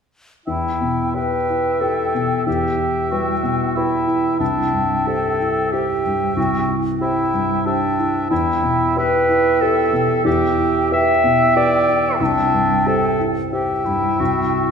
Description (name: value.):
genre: cinematic, emotional film score for orchestra.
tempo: 92 BPM.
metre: 3/4.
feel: rubato.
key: E minor.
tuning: A4 = 439 Hz.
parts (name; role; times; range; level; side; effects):
mellow hollow silver concert flute; second line; 0.5-14.7 s; G5; -24 LUFS; equal; none.
warm clarinet; second line; 0.5-14.7 s; D4 to E5; -20 LUFS; equal; none.
warm oboe; second line; 0.5-14.7 s; E5; -25 LUFS; right 1 dB; none.
dark baby grand piano; accompaniment; 0.5-14.7 s; C2 to C5; -21 LUFS; left 1 dB; none.
room: wet scoring stage reverb, RT60 1.7 s.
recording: minimal, uncompressed stereo recording.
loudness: -16 LUFS.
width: side -6 dB against mid.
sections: 0.5-14.7 A section.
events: none.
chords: 0.5 Em; 4.4 Cadd9; 8.3 Em; 12.2 Cadd9.